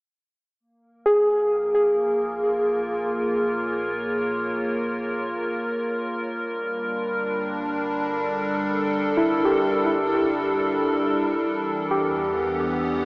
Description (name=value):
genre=ambient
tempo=free time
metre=none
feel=none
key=unclear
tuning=A4 = 440 Hz
part: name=evolving wavetable pad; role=sustained chords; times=1.5-13.1 s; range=E3 to Gb5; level=-24 LUFS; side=equal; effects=chorus, built-in reverb
part: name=deep rumbling drone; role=bass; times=1.3-13.1 s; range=G1 to E2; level=-46 LUFS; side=equal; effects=built-in reverb
part: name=muted felt-like synth keys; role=arpeggios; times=1.1-13.1 s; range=E4 to Ab4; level=-23 LUFS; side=equal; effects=chorus, tape echo
room=wet cathedral reverb, RT60 4.9 s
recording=worn, warbling old tape, cassette tape, warbly pitch drift, small speaker sound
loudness=-21 LUFS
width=side -40 dB against mid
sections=0.6-13.1 A section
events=fade-in on ambient pad 0.6-13.1; fade-in on synth drone 0.6-13.1; fade-out on synth keys 0.6-13.1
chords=0.6 Bbm7; 6.0 Gm7; 11.5 Em7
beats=free time